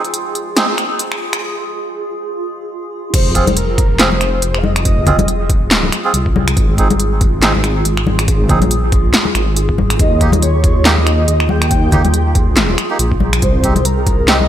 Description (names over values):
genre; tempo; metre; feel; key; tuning
deep dubstep; 140 BPM; 4/4; swing 57% on 16ths, half-time; F minor; A4 = 440 Hz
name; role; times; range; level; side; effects
granular cloud pad; sustained chords; 0.0-14.5 s; F4 to Ab4; -23 LUFS; right 1 dB; built-in reverb
melodica; stabs; 0.0-0.7, 3.4-14.4 s; Bb3 to Ab4; -21 LUFS; right 3 dB; dub echo
dark detuned saw bass; bass; 0.0-14.5 s; F1 to Eb2; -16 LUFS; equal; high-pass filter
deep house drum kit; drums; 0.0-14.4 s; crash cymbal, finger snaps, handclaps, hi-hat, snare drum; -17 LUFS; equal; none
breathy flute-like synth lead; melody; 3.1-5.5, 10.0-14.5 s; Bb4 to G5; -21 LUFS; equal; tremolo, ensemble chorus, vintage 12-bit sampler grit, dub echo
electronic kick drum; drums; 3.1-14.2 s; none; -16 LUFS; equal; overdrive
congas; percussion; 3.5-14.5 s; none; -20 LUFS; left 4 dB; none
room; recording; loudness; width
light reverb, digital ambience; high-pass filter; -12 LUFS; side -11 dB against mid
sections
0.0-3.1 A section; 3.1-14.5 B section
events
build-up 0.0-3.1; filter sweep on melodica 0.0-3.1; filter sweep 0.0-3.1; break 1.4-3.1; drop 3.1-14.5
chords
0.0 N.C.; 3.1 Fm; 6.6 N.C.; 10.0 Eb; 13.4 Cm